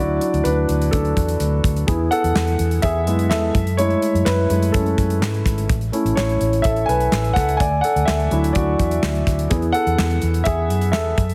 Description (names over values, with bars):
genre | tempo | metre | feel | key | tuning
piano-driven pop | 126 BPM | 4/4 | straight | unclear | A4 = 439 Hz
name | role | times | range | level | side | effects
warm grand piano | accompaniment | 0.0-11.3 s | F#3 to G#5 | -22 LUFS | equal | none
vintage muted fingered electric bass | bass | 0.0-11.3 s | G#1 to G#2 | -23 LUFS | equal | none
modern studio drum kit | drums | 0.2-11.3 s | handclaps, hi-hat, kick drum, snare drum | -26 LUFS | equal | none
room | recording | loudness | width
light reverb | heavily compressed radio sound | -19 LUFS | mono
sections
0.0-11.3 A section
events
grand piano solo 0.0-11.3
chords
0.0 Dadd9; 1.9 E; 3.5 F#m7; 5.7 A; 7.6 Dadd9; 9.5 E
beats
0.45 0.93 1.40 | 1.88 2.36 2.83 3.31 | 3.79 4.26 4.74 5.22 | 5.69 6.17 6.65 7.12 | 7.60 8.08 8.56 9.03 | 9.51 9.99 10.47 10.94